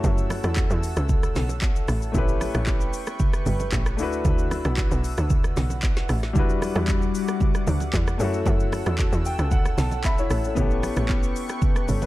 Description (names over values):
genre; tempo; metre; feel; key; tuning
amapiano; 114 BPM; 4/4; straight; unclear; A4 = 440 Hz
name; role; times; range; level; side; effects
warm grand piano; accompaniment; 0.0-12.1 s; G3 to B5; -29 LUFS; left 3 dB; none
warm analog pad; sustained chords; 0.0-12.1 s; G3 to E6; -33 LUFS; left 1 dB; chorus
tight log drum bass; bass; 0.0-12.1 s; G1 to F#2; -26 LUFS; equal; none
afro-pop drum kit; drums; 0.0-12.1 s; handclaps, hi-hat, kick drum, rim click, shaker, snare drum; -24 LUFS; equal; none
congas and bongos; percussion; 0.0-12.1 s; none; -32 LUFS; right 3 dB; none
room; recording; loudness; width
digital ambience; dark, warm production; -21 LUFS; side -17 dB against mid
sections
0.0-12.1 A section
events
grand piano fill 9.0-10.6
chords
0.0 F#m7; 2.1 A9; 4.0 D69; 6.4 Em9; 8.2 F#m7; 10.6 A9